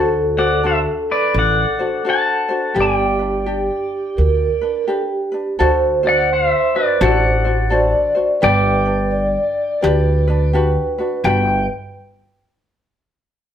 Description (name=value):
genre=Hawaiian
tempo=85 BPM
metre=4/4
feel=swing 62% on 8ths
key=G major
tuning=A4 = 441 Hz
part: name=vibraphone with soft mallets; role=second line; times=0.0-11.7 s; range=G4 to D5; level=-20 LUFS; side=right 1 dB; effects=none
part: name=ukulele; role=accompaniment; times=0.0-11.6 s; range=D4 to C5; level=-22 LUFS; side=left 3 dB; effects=none
part: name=upright bass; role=bass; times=0.0-11.7 s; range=G1 to D2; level=-19 LUFS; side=equal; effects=none
part: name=pedal steel guitar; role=melody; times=0.4-11.7 s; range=B4 to A5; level=-19 LUFS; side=left 1 dB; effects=none
room=wet studio reverb, RT60 1.0 s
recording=band playing live in one room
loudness=-15 LUFS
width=side -9 dB against mid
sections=0.0-5.6 A section; 5.6-11.2 B section; 11.2-13.5 C section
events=none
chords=0.0 D7; 2.8 G; 5.6 D7; 8.4 Gmaj7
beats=0.64 1.35 2.06 | 2.77 3.47 4.18 4.89 | 5.60 6.30 7.01 7.72 | 8.42 9.13 9.84 10.54 | 11.25